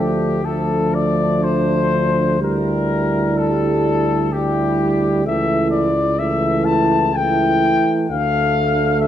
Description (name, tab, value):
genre	classical, hymn-like piece for brass band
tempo	60-66 BPM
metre	3/4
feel	rubato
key	D minor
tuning	A4 = 441 Hz
part	mellow trumpet section	melody	0.0-9.1 s	G4 to A5	-20 LUFS	left 5 dB	none
part	mellow French horn section	second line	0.0-9.1 s	D4 to A4	-22 LUFS	right 4 dB	none
part	mellow euphonium	accompaniment	0.0-9.1 s	D3 to G3	-24 LUFS	right 3 dB	none
part	warm euphonium	accompaniment	0.0-9.1 s	G3 to A3	-23 LUFS	equal	none
part	mellow tuba	bass	0.0-9.1 s	C#2 to D2	-23 LUFS	equal	none
room	moderate recital hall reverb, RT60 1.4 s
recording	none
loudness	-15 LUFS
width	side -10 dB against mid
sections	0.0-9.1 A section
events	none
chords	0.0 Dm; 2.4 Em7b5/D; 5.3 A7/C#; 8.1 Dm